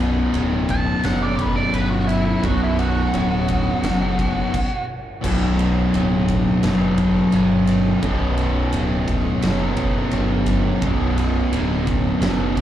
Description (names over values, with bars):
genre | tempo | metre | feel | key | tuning
stoner and doom metal | 86 BPM | 4/4 | straight | B minor | A4 = 437 Hz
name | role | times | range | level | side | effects
fuzz guitar | riff | 0.0-12.6 s | B1 to B2 | -20 LUFS | left 1 dB | distortion
fuzz picked electric bass | bass | 0.0-12.6 s | B0 to G1 | -22 LUFS | equal | overdrive
oversized low-tuned drum kit | drums | 0.3-12.6 s | crash cymbal, kick drum, ride cymbal, snare drum | -26 LUFS | equal | none
octave-fuzz lead guitar | melody | 0.7-4.8 s | E4 to A5 | -26 LUFS | right 1 dB | distortion, slapback echo, analog delay
room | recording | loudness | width
light reverb | live gig heard through the venue's PA, club reverb | -17 LUFS | side -11 dB against mid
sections
0.0-5.2 A section; 5.2-12.6 B section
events
lead electric guitar solo 0.0-5.2; stop 4.5-5.2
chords
0.0 Bm